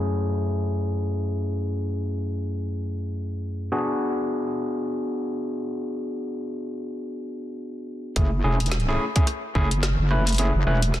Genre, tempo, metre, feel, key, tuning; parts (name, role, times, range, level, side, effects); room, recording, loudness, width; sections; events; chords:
glitch hop; 108 BPM; 4/4; swing 58% on 16ths; F# minor; A4 = 441 Hz
overdriven tine electric piano; stabs; 0.0-10.8 s; F#2 to B4; -26 LUFS; left 1 dB; sidechain pumping, low-pass filter, ping-pong delay
wobble bass; bass; 8.2-11.0 s; E1 to F#1; -22 LUFS; equal; chorus
drum and bass drum kit; drums; 8.2-11.0 s; hi-hat, rim click, snare drum; -28 LUFS; equal; low-pass filter on hats, low-pass filter on snare, low-pass filter on room
electronic kick drum; drums; 8.2-9.7 s; -21 LUFS; equal
light reverb, digital ambience; dense, heavily limited modern master; -23 LUFS; side -13 dB against mid
0.0-8.2 A section; 8.2-11.0 B section
drop 8.2-11.0
0.0 F#m7; 3.7 G#m7b5; 8.2 F#m7